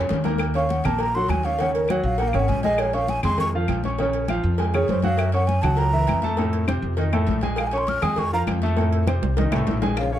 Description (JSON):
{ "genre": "Afro-Cuban jazz", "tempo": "201 BPM", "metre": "4/4", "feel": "straight", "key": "Bb minor", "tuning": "A4 = 439 Hz", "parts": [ { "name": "warm concert grand piano", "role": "accompaniment", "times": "0.0-10.2 s", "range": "A2 to Db6", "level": "-25 LUFS", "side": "equal", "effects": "none" }, { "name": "upright bass", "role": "bass", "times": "0.0-10.2 s", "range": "Ab1 to Gb2", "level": "-24 LUFS", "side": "equal", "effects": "none" }, { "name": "congas", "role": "percussion", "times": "0.1-10.2 s", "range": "none", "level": "-30 LUFS", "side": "left 4 dB", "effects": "none" }, { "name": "cowbell and bongos", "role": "percussion", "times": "0.1-10.2 s", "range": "none", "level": "-32 LUFS", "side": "left 4 dB", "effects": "none" }, { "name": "timbales and agogo bells", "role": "percussion", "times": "0.1-10.1 s", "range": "none", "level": "-33 LUFS", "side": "right 8 dB", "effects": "none" }, { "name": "claves", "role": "percussion", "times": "0.4-10.1 s", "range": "none", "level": "-34 LUFS", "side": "left 7 dB", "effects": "none" }, { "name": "breathy mellow concert flute", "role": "melody", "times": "0.6-10.2 s", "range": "Ab4 to F6", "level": "-25 LUFS", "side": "right 1 dB", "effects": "none" }, { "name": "breathy trombone", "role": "second line", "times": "10.0-10.2 s", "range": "Db3", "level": "-26 LUFS", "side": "left 6 dB", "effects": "none" } ], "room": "light reverb", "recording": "dark, warm production, faint mains hum", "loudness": "-20 LUFS", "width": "side -11 dB against mid", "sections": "0.0-10.0 A section", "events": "drum fill 0.0-0.4, 9.1-10.0; flute solo 0.0-10.0", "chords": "0.4 Ebm7; 2.8 Bbm7; 5.2 Gb7; 6.4 F7; 7.6 Bbm7; 8.8 F7", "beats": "0.10 | 0.40 0.70 1.00 1.30 | 1.60 1.90 2.19 2.49 | 2.79 3.09 3.39 3.69 | 3.99 4.29 4.59 4.89 | 5.19 5.49 5.79 6.08 | 6.38 6.68 6.98 7.28 | 7.58 7.88 8.18 8.47 | 8.77 9.07 9.37 9.67 | 9.97" }